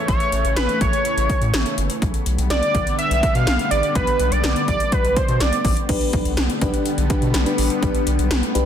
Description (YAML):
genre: synth-pop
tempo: 124 BPM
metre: 4/4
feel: straight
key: unclear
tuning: A4 = 442 Hz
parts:
  - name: octave-doubled lead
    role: melody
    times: 0.0-5.8 s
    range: B4 to F5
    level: -22 LUFS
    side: right 1 dB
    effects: chorus, ping-pong delay
  - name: lush unison pad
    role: sustained chords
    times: 0.0-8.7 s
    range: C#3 to B3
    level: -26 LUFS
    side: left 1 dB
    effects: chorus, phaser
  - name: round analog bass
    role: bass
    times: 0.1-8.7 s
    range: G1 to B2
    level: -22 LUFS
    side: equal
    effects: none
  - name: 80s electronic pad drums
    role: drums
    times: 0.1-8.7 s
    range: crash cymbal, hi-hat, kick drum, snare drum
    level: -22 LUFS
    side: equal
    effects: overdrive
  - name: mellow FM electric piano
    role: accompaniment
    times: 5.9-8.7 s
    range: D4 to B4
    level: -23 LUFS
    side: left 2 dB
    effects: chorus, phaser
room: light reverb, digital ambience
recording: dense, heavily limited modern master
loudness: -17 LUFS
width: side -9 dB against mid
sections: 0.0-5.9 A section; 5.9-8.7 B section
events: none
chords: 0.0 A; 2.0 G